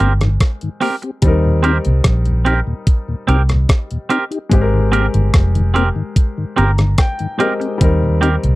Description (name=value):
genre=lovers rock reggae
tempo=73 BPM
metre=4/4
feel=straight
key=Eb major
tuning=A4 = 440 Hz
part: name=mellow tonewheel organ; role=accompaniment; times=0.0-8.5 s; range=Eb2 to G4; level=-20 LUFS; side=left 2 dB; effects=chorus vibrato, slow rotary speaker
part: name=warm grand piano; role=accompaniment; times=0.0-8.6 s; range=G3 to Bb5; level=-22 LUFS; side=left 3 dB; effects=none
part: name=twangy electric guitar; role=stabs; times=0.0-8.4 s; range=C4 to Bb4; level=-16 LUFS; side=right 4 dB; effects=none
part: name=vintage muted fingered electric bass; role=bass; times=0.0-8.6 s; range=F1 to Eb2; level=-14 LUFS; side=equal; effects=none
part: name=gated 80s digital drum machine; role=drums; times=0.0-8.6 s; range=hi-hat, kick drum, rim click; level=-14 LUFS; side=equal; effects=none
room=little or no reverb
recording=dry, close 1970s-style studio recording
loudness=-13 LUFS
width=side -18 dB against mid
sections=0.0-8.6 A section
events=grand piano fill 6.2-7.8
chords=0.0 Abmaj9; 1.2 Eb6; 4.5 Abmaj9; 7.8 Eb6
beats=0.41 | 1.23 2.06 2.88 3.70 | 4.52 5.34 6.17 6.99 | 7.81